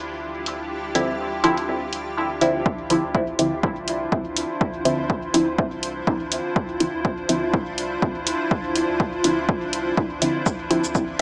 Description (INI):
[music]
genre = dub techno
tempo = 123 BPM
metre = 4/4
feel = swing 56% on 16ths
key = D minor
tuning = A4 = 440 Hz
[part]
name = granular cloud pad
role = sustained chords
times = 0.0-11.2 s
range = D4 to D5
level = -29 LUFS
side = equal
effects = built-in reverb, sidechain pumping
[part]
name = warm sub bass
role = bass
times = 0.0-11.2 s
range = C2 to D2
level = -46 LUFS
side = equal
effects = sidechain pumping
[part]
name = electronic hi-hat and cabasa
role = drums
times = 0.5-11.1 s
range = none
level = -27 LUFS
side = equal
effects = low-pass filter on hats, low-pass filter on perc
[part]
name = filtered dub chord stab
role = stabs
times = 0.9-10.8 s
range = D3 to E4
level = -26 LUFS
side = equal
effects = chorus, phaser, vintage 12-bit sampler grit, sidechain pumping, dub echo
[part]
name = electronic kick drum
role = drums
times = 2.7-11.1 s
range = none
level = -26 LUFS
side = equal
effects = none
[sound]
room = wet spring reverb, RT60 1.3 s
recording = echo-heavy mix, low-pass filter, small speaker sound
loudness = -23 LUFS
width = mono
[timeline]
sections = 0.0-2.7 A section; 2.7-11.2 B section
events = filter sweep 0.0-2.7; filter sweep on synth stab 2.7-11.2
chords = 0.0 Dm9